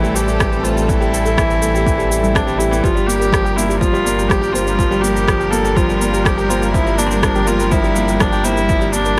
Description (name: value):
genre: piano and strings electronica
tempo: 123 BPM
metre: 4/4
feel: straight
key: unclear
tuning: A4 = 440 Hz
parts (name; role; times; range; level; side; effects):
- warm viola; melody; 0.0-9.2 s; C4 to A4; -22 LUFS; equal; none
- rich studio string section; sustained chords; 0.0-9.2 s; F3 to Bb4; -26 LUFS; equal; sidechain pumping
- soft round pluck; arpeggios; 0.0-9.2 s; G3 to G5; -31 LUFS; equal; none
- clear upright piano; riff; 0.0-9.2 s; E3 to G4; -22 LUFS; equal; delay
- warm sub bass; bass; 0.0-9.2 s; G1 to A1; -24 LUFS; equal; sidechain pumping
- electronic shaker and rim click; drums; 0.0-9.2 s; none; -25 LUFS; equal; none
- electronic kick drum; drums; 0.4-8.8 s; none; -22 LUFS; equal; overdrive
room: light reverb, small room ambience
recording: none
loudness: -16 LUFS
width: mono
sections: 0.0-9.2 A section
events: none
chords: 0.0 Am7; 2.8 Gm7